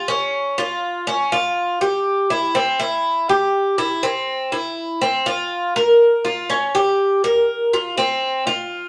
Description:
latin; 122 BPM; 4/4; straight; A4 = 443 Hz
Cuban tres; solo; 0.0-8.9 s; C4 to Bb4; -19 LUFS; equal
moderate studio reverb, RT60 0.8 s; -19 LUFS; mono
0.0-8.9 A section

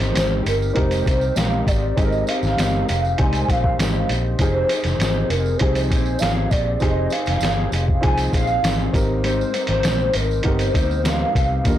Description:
indie pop, bedroom pop; 99 BPM; 4/4; straight; A4 = 440 Hz
hollow clarinet-like synth lead; melody; 0.0-11.8 s; Bb4 to Ab5; -24 LUFS; equal; ensemble chorus, tape echo
dark upright piano; accompaniment; 0.0-11.8 s; D3 to C5; -27 LUFS; right 3 dB; plate reverb
mellow electric guitar; accompaniment; 0.0-11.8 s; Ab2 to Ab4; -27 LUFS; left 3 dB; wide subtle chorus, warbly pitch drift
vintage muted fingered electric bass; bass; 0.0-11.8 s; F1 to Eb2; -23 LUFS; equal; transformer saturation
lo-fi sampler-style drum kit; drums; 0.0-11.8 s; hi-hat, kick drum, snare drum; -22 LUFS; equal; overdrive
tambourine; percussion; 0.0-11.8 s; -37 LUFS; right 7 dB
light reverb; blown-out, overdriven recording, overdrive; -17 LUFS; side -12 dB against mid
0.0-11.8 A section
0.0 Fm7; 8.9 Abmaj7

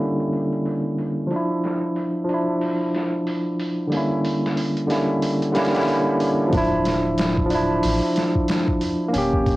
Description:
trip hop; 92 BPM; 4/4; swing 60% on 16ths; D harmonic minor; A4 = 445 Hz
barky tine electric piano; accompaniment; 0.0-9.6 s; D3 to G4; -20 LUFS; equal; overdrive, harmonic tremolo, cassette tape, tape echo
trip hop sampler-style drum kit; drums; 0.0-9.6 s; hi-hat, kick drum, snare drum; -27 LUFS; equal; high-pass filter on hats, cassette tape, high-pass filter on snare, high-pass filter on kick, high-pass filter on room
soft dub sub bass; bass; 6.5-9.6 s; D1 to A1; -27 LUFS; equal
light reverb; home recording on cassette, vinyl crackle, low-pass filter; -19 LUFS; side -18 dB against mid
0.0-6.5 A section; 6.5-9.6 B section
filter sweep 0.0-6.5
0.0 A#dim7; 1.3 Dmadd9; 3.9 A#dim7; 6.5 Dmadd9

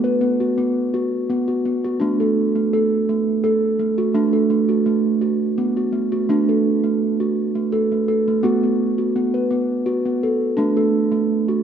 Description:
world meditative, meditative tuned percussion; 84 BPM; 3/4; straight; D major pentatonic; A4 = 438 Hz
steel tongue drum; solo; 0.0-11.6 s; A3 to B4; -17 LUFS; right 1 dB
wet church reverb, RT60 2.7 s; dark, warm production; -17 LUFS; side -8 dB against mid
0.0-6.3 A section; 6.3-11.6 B section
0.0 B5; 2.0 D; 8.4 B5; 10.6 D

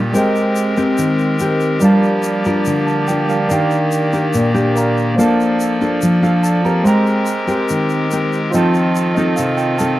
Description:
bossa nova; 143 BPM; 4/4; straight; A4 = 440 Hz
barky tine electric piano; accompaniment; 0.0-10.0 s; G3 to Bb5; -19 LUFS; right 3 dB; medium stereo tremolo
nylon-string guitar; accompaniment; 0.0-10.0 s; Bb2 to Bb4; -15 LUFS; left 1 dB
pipe organ, clarinet reed; sustained chords; 0.0-10.0 s; Bb2 to D5; -22 LUFS; left 1 dB
egg shaker; percussion; 0.1-10.0 s; -33 LUFS; left 5 dB
moderate studio reverb, RT60 0.7 s; dry, close 1970s-style studio recording; -13 LUFS; side -15 dB against mid
0.0-10.0 A section
tine electric piano fill 2.7-3.5, 6.0-6.9, 9.0-10.0
0.2 Abmaj9; 1.8 Gm7; 3.5 Ebmaj7; 5.2 Bbmaj7; 6.9 Abmaj9; 8.5 F7

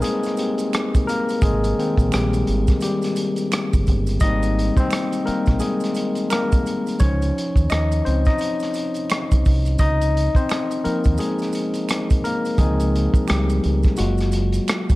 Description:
R&B, neo-soul; 86 BPM; 4/4; swing 62% on 16ths; Ab major; A4 = 440 Hz
overdriven tine electric piano; accompaniment; 0.0-15.0 s; Eb3 to Eb5; -21 LUFS; left 2 dB
crunchy breakbeat drum kit; drums; 0.0-15.0 s; hi-hat, kick drum, rim click; -22 LUFS; equal
maracas and finger snaps; percussion; 0.0-15.0 s; -37 LUFS; right 8 dB
deep dub fingered electric bass; bass; 1.4-15.0 s; F1 to Eb2; -21 LUFS; equal
light reverb, small room reverb; dark, warm production; -18 LUFS; side -19 dB against mid
0.0-15.0 A section
tine electric piano solo 0.0-15.0
0.0 Abmaj9; 7.0 Dbmaj9; 14.0 Gbmaj9

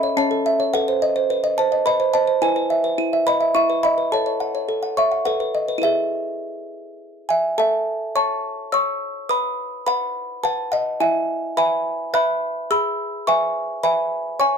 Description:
classical, lullaby for music box; 106 BPM; 3/4; straight; E major; A4 = 441 Hz
music box; solo; 0.0-14.6 s; C#4 to F#6; -18 LUFS; equal
moderate studio reverb, RT60 0.6 s; -18 LUFS; side -6 dB against mid
0.0-7.6 A section; 7.6-14.6 B section
0.0 A/C#; 0.7 B7b9; 2.4 E; 4.1 F#m/A; 5.3 B7; 5.8 E; 7.6 A; 9.3 B; 11.0 E; 12.7 E/G#

